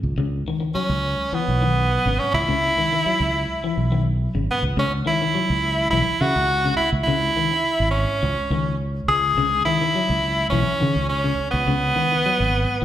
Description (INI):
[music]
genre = afrobeat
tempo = 104 BPM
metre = 4/4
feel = straight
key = C# minor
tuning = A4 = 441 Hz
[part]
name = fingered electric bass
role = bass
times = 0.0-12.8 s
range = G#1 to C#3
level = -23 LUFS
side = right 1 dB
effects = none
[part]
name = electric guitar at the edge of break-up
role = arpeggios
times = 0.2-12.8 s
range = C#3 to F#3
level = -26 LUFS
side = left 5 dB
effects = slapback echo
[part]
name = edgy tenor saxophone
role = melody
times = 0.7-12.8 s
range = B3 to G#4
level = -20 LUFS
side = right 1 dB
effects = slapback echo
[sound]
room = light reverb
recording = live gig heard through the venue's PA, recital hall reverb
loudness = -18 LUFS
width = side -11 dB against mid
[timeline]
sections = 0.0-4.8 A section; 4.8-12.8 B section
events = none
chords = 0.0 C#m9; 4.8 C#madd9